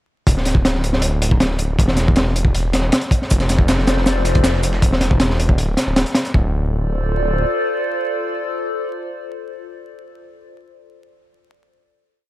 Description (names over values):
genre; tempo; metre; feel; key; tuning
drum and bass, jungle; 158 BPM; 4/4; straight; D minor; A4 = 438 Hz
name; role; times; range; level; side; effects
detuned saw bass; bass; 0.3-7.4 s; D1 to F1; -19 LUFS; equal; tube saturation
crunchy breakbeat drum kit; drums; 0.3-6.4 s; hi-hat, kick drum, snare drum; -16 LUFS; equal; none
warbly tape-like pad; sustained chords; 3.6-10.1 s; F4 to D5; -24 LUFS; left 1 dB; chorus, built-in reverb, phaser
dusty soul sampler-style drum kit; drums; 3.3-4.8 s; hi-hat, shaker, snare drum; -29 LUFS; right 3 dB; high-pass filter on perc, high-pass filter on hats, high-pass filter on snare
room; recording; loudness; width
studio reverb; vinyl crackle; -15 LUFS; side -15 dB against mid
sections
0.3-6.3 drop; 6.3-9.4 final chord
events
drop 0.3-6.3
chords
0.3 N.C.; 3.3 Dm7/F; 4.8 Dsus2; 6.3 Dm7